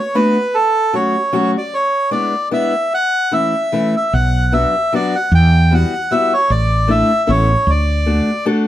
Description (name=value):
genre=musette waltz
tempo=151 BPM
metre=3/4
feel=swing 55% on 8ths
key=unclear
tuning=A4 = 440 Hz
part: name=bandoneon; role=melody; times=0.0-8.5 s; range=A4 to G5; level=-16 LUFS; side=equal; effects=none
part: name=fingerpicked steel-string acoustic guitar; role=accompaniment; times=0.1-8.7 s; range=E3 to A4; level=-18 LUFS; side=left 2 dB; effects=none
part: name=woody fretless electric bass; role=bass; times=4.1-8.2 s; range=A1 to E2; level=-14 LUFS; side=right 1 dB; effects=none
room=moderate stone room reverb, RT60 1.0 s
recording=band playing live in one room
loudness=-13 LUFS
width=side -12 dB against mid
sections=0.0-8.7 A section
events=none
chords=0.0 Bm7; 0.5 F#m; 1.7 E7; 2.9 A; 4.1 Bm; 5.3 Emadd9; 6.5 Asus4; 7.3 Aadd9; 7.7 D